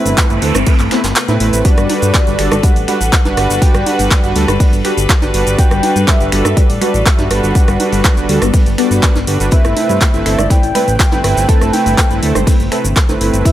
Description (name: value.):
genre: progressive house.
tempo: 122 BPM.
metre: 4/4.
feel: straight.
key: G major.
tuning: A4 = 439 Hz.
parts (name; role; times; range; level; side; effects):
warm velvety synth lead; melody; 0.0-13.5 s; D5 to A5; -21 LUFS; equal; chorus, cassette tape, digital delay.
bright chamber string section; sustained chords; 0.0-13.5 s; C3 to B4; -24 LUFS; left 2 dB; sidechain pumping.
soft supersaw; stabs; 0.0-13.5 s; G3 to D5; -18 LUFS; right 3 dB; cassette tape, sidechain pumping, digital delay.
noise sweep; sound effects; 0.1-1.7 s; none; -25 LUFS; right 4 dB; none.
soft round pluck; arpeggios; 0.1-13.5 s; G3 to D5; -21 LUFS; left 2 dB; wide subtle chorus, sidechain pumping, digital delay.
fat analog bass; bass; 0.1-13.4 s; G1 to G2; -17 LUFS; equal; sidechain pumping.
pop drum kit; drums; 0.1-13.5 s; finger snaps, handclaps, hi-hat, shaker; -19 LUFS; equal; overdrive.
electronic kick drum; drums; 0.2-13.5 s; none; -12 LUFS; equal; none.
vintage brush drum kit; drums; 0.2-13.5 s; hi-hat, snare drum; -26 LUFS; equal; none.
electronic rim click and congas; percussion; 0.5-13.2 s; none; -21 LUFS; right 3 dB; overdrive, sidechain pumping on snare, sidechain pumping on perc.
room: digital ambience.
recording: none.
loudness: -10 LUFS.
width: side -13 dB against mid.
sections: 0.0-13.5 A section.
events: noise sweep 0.1-1.7; kick drops out 1.2-1.7.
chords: 0.0 Amadd9/G; 1.7 Gmaj7; 9.5 Amadd9/G.